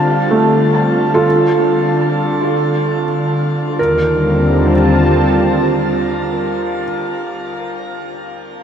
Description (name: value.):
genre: ambient.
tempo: 71 BPM.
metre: 3/4.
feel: straight.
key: Eb lydian.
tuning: A4 = 440 Hz.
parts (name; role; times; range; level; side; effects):
warm analog pad; sustained chords; 0.0-7.1 s; Eb2 to A5; -15 LUFS; equal; wide subtle chorus.
felt-muted upright piano; arpeggios; 0.0-8.6 s; A3 to A5; -17 LUFS; right 2 dB; diffuse ambient delay.
room: wet shimmer reverb, RT60 9.0 s.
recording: none.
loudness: -12 LUFS.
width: side -8 dB against mid.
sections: 0.0-3.8 A section; 3.8-6.3 B section.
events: none.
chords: 0.0 F69/D; 3.8 Ebmaj7.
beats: 0.40 | 1.25 2.09 2.94 | 3.79 4.63 5.47.